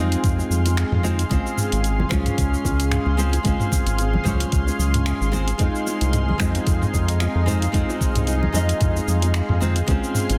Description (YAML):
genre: sunset chillout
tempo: 112 BPM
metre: 4/4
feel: swing 56% on 16ths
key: F minor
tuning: A4 = 440 Hz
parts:
  - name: nylon-string guitar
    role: accompaniment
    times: 0.0-10.4 s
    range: Ab3 to Eb5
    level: -28 LUFS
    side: equal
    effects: tape echo
  - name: lush unison pad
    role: sustained chords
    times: 0.0-10.4 s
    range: Eb4 to C6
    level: -31 LUFS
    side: equal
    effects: chorus
  - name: round analog bass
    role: bass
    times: 0.0-10.4 s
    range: Ab1 to F2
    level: -24 LUFS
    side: equal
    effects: tube saturation
  - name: smooth R&B drum kit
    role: drums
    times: 0.1-10.4 s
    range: cabasa, finger snaps, hi-hat, toms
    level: -29 LUFS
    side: equal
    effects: overdrive, soft clipping on snare
  - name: electronic kick drum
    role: drums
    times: 0.2-10.0 s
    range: none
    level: -26 LUFS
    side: equal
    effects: none
  - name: bongos and congas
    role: percussion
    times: 0.4-10.4 s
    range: none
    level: -33 LUFS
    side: equal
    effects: none
room: light reverb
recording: dense, heavily limited modern master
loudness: -21 LUFS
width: mono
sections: 0.0-10.4 A section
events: none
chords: 0.0 Fm7; 1.3 Dbmaj7; 5.6 Fm7